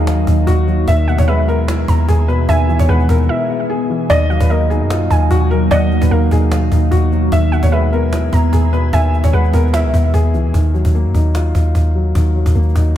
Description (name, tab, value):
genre	hip hop, trap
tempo	149 BPM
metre	4/4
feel	half-time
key	Eb minor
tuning	A4 = 440 Hz
part	felt-muted upright piano	melody	0.0-10.5 s	Gb4 to E5	-21 LUFS	left 2 dB	low-pass filter, analog delay
part	warbly dusty pluck	second line	0.0-10.1 s	Eb5 to Bb5	-24 LUFS	right 3 dB	chorus, analog delay
part	dark grand piano	accompaniment	0.0-13.0 s	B2 to F5	-21 LUFS	left 4 dB	low-pass filter
part	glassy FM pad	sustained chords	0.0-10.5 s	B2 to E5	-22 LUFS	right 2 dB	ensemble chorus, built-in reverb
part	clean 808-style bass	bass	0.0-13.0 s	Db2 to Gb2	-13 LUFS	equal	none
part	downlifter	sound effects	0.0-0.9 s	none	barely audible	none	none
part	cajon	drums	0.1-12.9 s	none	-24 LUFS	equal	none
room	light reverb, studio reverb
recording	none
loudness	-12 LUFS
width	side -11 dB against mid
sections	0.0-10.5 A section; 10.5-13.0 B section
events	break 3.3-4.1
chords	0.0 Ebmadd9; 0.9 E/Eb; 4.1 Ebmadd9; 7.3 E/Eb; 10.5 Ebmadd9